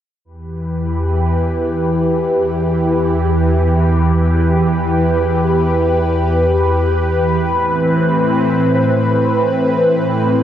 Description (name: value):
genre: trance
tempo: free time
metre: none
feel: none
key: E minor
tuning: A4 = 440 Hz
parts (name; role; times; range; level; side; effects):
- lush unison pad; sustained chords; 0.2-10.4 s; E2 to B4; -13 LUFS; equal; chorus, phaser
room: moderate huge ambient reverb, RT60 7.3 s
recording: none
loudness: -13 LUFS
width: side -10 dB against mid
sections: 0.2-10.4 A section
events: none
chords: 0.2 Em; 7.4 Amadd9